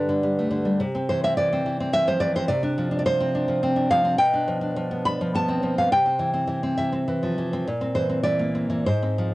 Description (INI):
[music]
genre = romantic piece for solo classical guitar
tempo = 105 BPM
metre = 3/4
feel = rubato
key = C major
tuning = A4 = 442 Hz
[part]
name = nylon-string guitar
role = solo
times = 0.0-9.3 s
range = G2 to B5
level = -21 LUFS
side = equal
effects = cassette tape
[sound]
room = moderate booth ambience, RT60 0.2 s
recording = home recording on cassette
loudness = -21 LUFS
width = side -18 dB against mid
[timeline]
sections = 0.0-9.3 A section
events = none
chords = 0.0 G; 0.8 C; 2.5 Dm7/C; 4.2 G7/B; 5.9 C; 7.7 C7/Bb